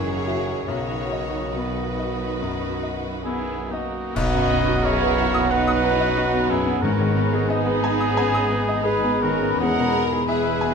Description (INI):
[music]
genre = classical, romantic movement for piano and orchestra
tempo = 59-94 BPM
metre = 4/4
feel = rubato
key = B major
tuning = A4 = 440 Hz
[part]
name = bright grand piano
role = melody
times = 0.0-10.7 s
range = B1 to D#6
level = -25 LUFS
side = left 3 dB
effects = none
[part]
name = warm symphonic violin section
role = melody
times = 0.0-10.7 s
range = A#3 to E5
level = -33 LUFS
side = left 3 dB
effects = none
[part]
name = warm oboe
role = second line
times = 0.0-10.7 s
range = D#4 to D#5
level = -31 LUFS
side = right 1 dB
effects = none
[part]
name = warm symphonic violin section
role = second line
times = 0.0-10.7 s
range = A#3 to B4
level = -31 LUFS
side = left 1 dB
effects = none
[part]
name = dark bassoon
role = accompaniment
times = 0.0-10.7 s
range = D#3 to G#3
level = -33 LUFS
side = right 1 dB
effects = none
[part]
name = warm symphonic viola section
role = accompaniment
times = 0.0-10.7 s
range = F#3 to G#4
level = -31 LUFS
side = right 4 dB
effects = none
[part]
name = mellow French horn section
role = sustained chords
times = 0.0-10.7 s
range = B2 to G#4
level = -31 LUFS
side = left 3 dB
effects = none
[part]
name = rich symphonic double bass section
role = bass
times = 0.0-10.7 s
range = E1 to B1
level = -30 LUFS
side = right 4 dB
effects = none
[part]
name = warm symphonic cello section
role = bass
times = 0.0-10.7 s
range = E2 to G#4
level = -32 LUFS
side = right 3 dB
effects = none
[part]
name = cymbal swell, clash cymbals and concert bass drum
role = percussion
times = 0.7-5.5 s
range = none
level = -33 LUFS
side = equal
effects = none
[part]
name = mellow trumpet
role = stabs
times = 3.2-10.7 s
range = F#4 to F#5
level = -27 LUFS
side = right 3 dB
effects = none
[part]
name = large flute ensemble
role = second line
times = 4.2-10.7 s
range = F#5 to B5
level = -28 LUFS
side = right 1 dB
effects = none
[part]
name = timpani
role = percussion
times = 6.8-7.8 s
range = G#2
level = -30 LUFS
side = left 1 dB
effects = none
[sound]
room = moderate recital hall reverb, RT60 1.4 s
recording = none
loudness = -19 LUFS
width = side -6 dB against mid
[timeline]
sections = 0.0-4.2 A section; 4.2-10.7 B section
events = band accent 4.2-4.8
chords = 0.0 F#7; 0.7 B; 6.8 G#m; 9.6 Emaj7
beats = | 0.69 1.57 2.41 3.25 | 4.16 4.85 5.50 6.17 | 6.82 7.49 8.15 8.83 | 9.59 10.28